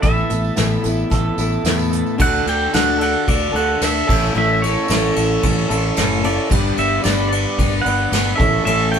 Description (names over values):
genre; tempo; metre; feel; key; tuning
folk rock and heartland rock; 111 BPM; 4/4; straight; D major; A4 = 441 Hz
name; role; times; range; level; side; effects
pedal steel guitar; melody; 0.0-9.0 s; C#5 to G5; -21 LUFS; right 2 dB; none
picked steel-string acoustic guitar; accompaniment; 0.0-9.0 s; A2 to B4; -23 LUFS; left 3 dB; none
pedal harmonium; sustained chords; 0.0-9.0 s; E4 to B5; -33 LUFS; right 2 dB; none
electric guitar through a small old amp; riff; 0.0-9.0 s; A2 to B4; -23 LUFS; right 1 dB; none
fingered electric bass; bass; 0.0-9.0 s; F#1 to E2; -22 LUFS; equal; none
soft brush drum kit; drums; 0.0-9.0 s; crash cymbal, hi-hat, kick drum, ride cymbal, snare drum; -20 LUFS; equal; none
tambourine; percussion; 0.0-8.2 s; none; -34 LUFS; right 6 dB; none
room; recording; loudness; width
moderate studio reverb, RT60 0.9 s; band playing live in one room; -15 LUFS; side -7 dB against mid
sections
0.0-2.2 A section; 2.2-9.0 B section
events
none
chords
0.0 Asus2; 2.2 D; 4.1 A; 6.5 G; 8.4 A